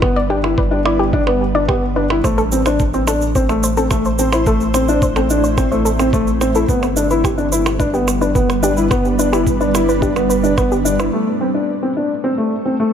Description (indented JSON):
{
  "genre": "piano and strings electronica",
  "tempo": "108 BPM",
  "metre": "4/4",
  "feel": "straight",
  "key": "A minor",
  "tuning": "A4 = 440 Hz",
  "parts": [
    { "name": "granular cloud pad", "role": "sustained chords", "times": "0.0-12.9 s", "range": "G3 to C5", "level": "-22 LUFS", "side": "right 1 dB", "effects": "built-in reverb, sidechain pumping" },
    { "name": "felt-muted upright piano", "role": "riff", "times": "0.0-12.9 s", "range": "A3 to E4", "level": "-17 LUFS", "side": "left 2 dB", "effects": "low-pass filter, digital delay" },
    { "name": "warm sub bass", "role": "bass", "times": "0.0-11.1 s", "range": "G1 to A1", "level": "-22 LUFS", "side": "right 1 dB", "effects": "sidechain pumping" },
    { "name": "electronic kick drum", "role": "drums", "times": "0.0-10.7 s", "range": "none", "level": "-20 LUFS", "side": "equal", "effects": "none" },
    { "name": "percussion blips and shaker", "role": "drums", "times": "0.0-11.1 s", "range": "none", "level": "-25 LUFS", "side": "right 5 dB", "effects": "low-pass filter on cymbals, low-pass filter on perc" },
    { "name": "soft round pluck", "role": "arpeggios", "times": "0.2-11.0 s", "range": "G4 to D5", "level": "-22 LUFS", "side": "left 1 dB", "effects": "chorus, sidechain pumping, digital delay" }
  ],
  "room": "moderate lush hall reverb, RT60 2.4 s",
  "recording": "none",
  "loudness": "-14 LUFS",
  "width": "side -8 dB against mid",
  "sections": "0.0-11.1 A section; 11.1-12.9 B section",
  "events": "fade-in on ambient pad 0.0-11.1",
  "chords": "0.0 G; 2.2 Am; 6.7 G; 11.1 Am"
}